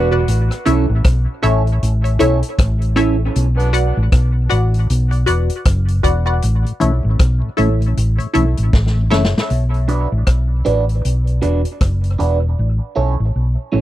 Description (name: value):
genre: dub reggae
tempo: 78 BPM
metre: 4/4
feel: swing 59% on 16ths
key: B minor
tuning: A4 = 437 Hz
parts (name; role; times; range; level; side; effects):
- warm horn section; second line; 0.0-3.7 s; F#3 to D4; -28 LUFS; right 1 dB; dub echo
- electric guitar at the edge of break-up; accompaniment; 0.0-3.2, 9.9-13.8 s; C#4 to D5; -22 LUFS; right 5 dB; phaser, dub echo
- filtered dub chord stab; stabs; 0.0-9.3 s; E4 to F#5; -21 LUFS; left 2 dB; phaser, dub echo
- hollow-body short-scale fingered electric bass; bass; 0.0-13.8 s; E1 to B1; -15 LUFS; equal; tube saturation
- mellow tonewheel organ; accompaniment; 0.1-0.2, 6.7-9.4 s; A2 to C#4; -24 LUFS; left 2 dB; slow rotary speaker, dub echo
- vintage drum kit; drums; 0.3-12.4 s; hi-hat, kick drum, rim click, snare drum; -17 LUFS; equal; none
room: little or no reverb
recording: dry, close 1970s-style studio recording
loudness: -14 LUFS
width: side -14 dB against mid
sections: 0.0-9.5 A section; 9.5-13.8 B section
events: drum fill 8.7-9.5; part muted 12.6-13.8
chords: 0.3 A; 3.4 Bm; 6.4 A; 9.5 Bm; 12.6 A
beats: | 0.28 1.05 1.81 2.58 | 3.35 4.12 4.89 5.66 | 6.43 7.20 7.96 8.73 | 9.50 10.27 11.04 11.81 | 12.58 13.34